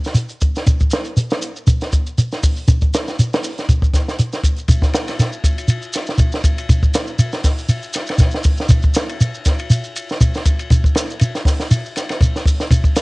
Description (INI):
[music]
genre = afrobeat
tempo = 120 BPM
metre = 4/4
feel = swing 54% on 16ths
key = none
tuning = none
[part]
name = shekere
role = percussion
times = 0.0-13.0 s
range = none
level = -16 LUFS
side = equal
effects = none
[part]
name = compact cocktail drum kit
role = drums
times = 0.1-13.0 s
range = hi-hat, kick drum, ride cymbal, snare drum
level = -16 LUFS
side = equal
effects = cassette tape
[sound]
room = little or no reverb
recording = home recording on cassette, nothing above 10.5 kHz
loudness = -15 LUFS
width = side -25 dB against mid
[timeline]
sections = 0.0-4.7 A section; 4.7-13.0 B section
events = none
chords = none